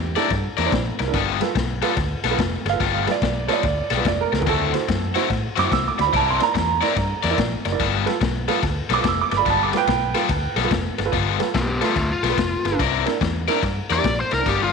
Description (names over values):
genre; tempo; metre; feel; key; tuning
electric blues shuffle; 144 BPM; 4/4; swing 65% on 8ths; G mixolydian; A4 = 439 Hz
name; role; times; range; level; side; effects
clear upright piano; second line; 0.0-10.6 s; G4 to E6; -23 LUFS; right 9 dB; none
vintage muted fingered electric bass; bass; 0.0-14.7 s; F1 to A2; -26 LUFS; equal; none
warm upright piano; accompaniment; 0.2-14.5 s; D4 to D5; -27 LUFS; right 11 dB; none
overdriven semi-hollow guitar; riff; 0.2-14.7 s; D3 to D5; -24 LUFS; left 13 dB; none
crunchy breakbeat drum kit; drums; 0.2-14.6 s; kick drum, ride cymbal, snare drum, splash cymbal, toms; -25 LUFS; left 4 dB; none
overdriven slide guitar; melody; 11.6-14.7 s; A3 to D5; -23 LUFS; left 3 dB; none
room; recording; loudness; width
moderate echo chamber reverb, RT60 1.8 s, studio reverb; 1960s-style stereo with parts hard left and right; -18 LUFS; side -5 dB against mid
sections
0.0-11.1 A section; 11.1-14.7 A section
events
upright piano solo 0.0-11.1; drum fill 4.3; electric slide guitar solo 11.1-14.7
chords
0.0 C9; 1.1 G9; 4.5 D9; 6.1 C9; 7.8 G9; 12.8 C9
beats
0.31 0.73 | 1.14 1.56 1.98 2.39 | 2.81 3.23 3.64 4.06 | 4.47 4.89 5.30 5.72 | 6.14 6.55 6.97 7.38 | 7.80 8.22 8.63 9.05 | 9.46 9.88 10.30 10.71 | 11.13 11.55 11.96 12.38 | 12.80 13.21 13.63 14.05 | 14.46